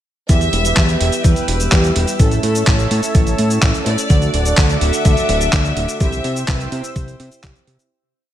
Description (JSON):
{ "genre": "italo disco", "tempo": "126 BPM", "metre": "4/4", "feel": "straight", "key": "E minor", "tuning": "A4 = 440 Hz", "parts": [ { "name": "dark studio violin section", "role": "melody", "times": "0.3-7.7 s", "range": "G4 to E5", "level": "-22 LUFS", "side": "left 1 dB", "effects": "digital delay" }, { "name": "warm analog pad", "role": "sustained chords", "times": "0.3-7.9 s", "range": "A4 to E6", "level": "-25 LUFS", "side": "equal", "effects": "chorus" }, { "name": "analog synth brass", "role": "stabs", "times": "0.3-7.9 s", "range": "G3 to C5", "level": "-25 LUFS", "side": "right 3 dB", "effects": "chorus, digital delay" }, { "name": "fat analog bass", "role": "bass", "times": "0.3-7.8 s", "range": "D1 to C3", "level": "-18 LUFS", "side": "equal", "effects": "none" }, { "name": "dusty soul sampler-style drum kit", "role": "drums", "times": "0.3-7.9 s", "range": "cabasa, handclaps, hi-hat", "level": "-21 LUFS", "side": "equal", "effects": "studio reverb, gated reverb" }, { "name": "electronic kick drum", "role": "drums", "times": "0.3-7.5 s", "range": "none", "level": "-15 LUFS", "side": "equal", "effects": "studio reverb" } ], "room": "light reverb, digital ambience", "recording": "none", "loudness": "-13 LUFS", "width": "side -11 dB against mid", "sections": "0.3-7.9 chorus", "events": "fade-out 5.4-7.9", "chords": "0.3 Em; 2.2 A; 4.1 D; 6.0 C", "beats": "| 0.29 0.77 1.24 1.72 | 2.20 2.67 3.15 3.62 | 4.10 4.58 5.05 5.53 | 6.01 6.48 6.96 7.43" }